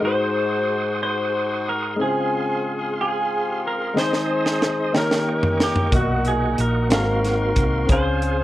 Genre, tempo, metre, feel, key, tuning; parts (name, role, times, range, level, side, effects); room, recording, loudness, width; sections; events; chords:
slow gospel; 61 BPM (dotted quarters); 6/8; straight; Ab major; A4 = 443 Hz
clean electric guitar; melody; 0.0-8.4 s; F#4 to C5; -28 LUFS; right 3 dB
mellow horn section; melody; 0.0-8.4 s; A#3 to C5; -25 LUFS; left 2 dB
clear concert grand piano; accompaniment; 0.0-8.4 s; Ab2 to F5; -25 LUFS; left 2 dB
bright tonewheel organ; sustained chords; 0.0-8.4 s; Bb3 to Eb6; -29 LUFS; right 2 dB; slow rotary speaker, overdrive, chorus vibrato
crisp fusion drum kit; drums; 4.0-8.4 s; hi-hat, kick drum, snare drum, toms; -22 LUFS; equal
hollow-body short-scale fingered electric bass; bass; 5.9-8.4 s; Ab1 to Db2; -23 LUFS; equal
light reverb; worn, warbling old tape, cassette tape, warbly pitch drift; -19 LUFS; side -15 dB against mid
0.0-8.4 A section
drum fill 4.0-5.9
0.0 Ab7; 2.0 Dbmaj7; 4.0 Ab/Eb; 4.9 Eb7; 5.9 Bmaj7; 6.9 Ab13; 7.9 Dbmaj7